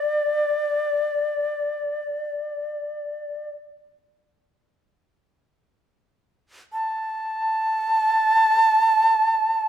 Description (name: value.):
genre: japanese traditional, Japanese chamber music.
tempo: free time.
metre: none.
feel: none.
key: unclear.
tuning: A4 = 440 Hz.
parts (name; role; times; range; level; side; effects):
bright shakuhachi; solo; 0.0-9.7 s; D5 to A5; -20 LUFS; equal; none.
room: light reverb.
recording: minimal, uncompressed stereo recording.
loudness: -20 LUFS.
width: side -10 dB against mid.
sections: 0.0-9.7 A section.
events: none.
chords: none.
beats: free time.